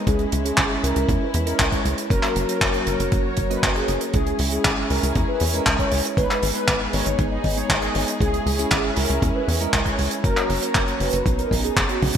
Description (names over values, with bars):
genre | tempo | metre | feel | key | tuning
italo disco | 118 BPM | 4/4 | straight | C# dorian | A4 = 440 Hz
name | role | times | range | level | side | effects
dark chamber string section | sustained chords | 0.0-12.2 s | F#3 to C#5 | -28 LUFS | left 1 dB | none
bell-like tine electric piano | stabs | 0.0-12.2 s | G#3 to D#5 | -29 LUFS | right 2 dB | fast stereo tremolo, low-pass filter
mellow synth brass | melody | 0.1-12.1 s | F#4 to D#5 | -26 LUFS | equal | chorus, phaser, digital delay
tight sequencer bass | bass | 0.1-12.1 s | F#1 to E2 | -25 LUFS | equal | none
damped 70s drum kit | drums | 0.1-12.2 s | handclaps, hi-hat, toms | -24 LUFS | right 1 dB | gated reverb
electronic kick drum | drums | 0.1-11.9 s | none | -25 LUFS | equal | none
room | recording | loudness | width
moderate lush hall reverb, RT60 1.9 s, small room ambience | bright 1980s-style digital production | -19 LUFS | side -8 dB against mid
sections
0.0-12.2 A section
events
filter sweep on tine electric piano 0.0-12.2; drum fill 12.0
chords
0.1 C#m; 2.1 F#; 4.1 C#m; 6.2 G#m; 8.2 C#m; 10.2 F#; 11.3 Badd9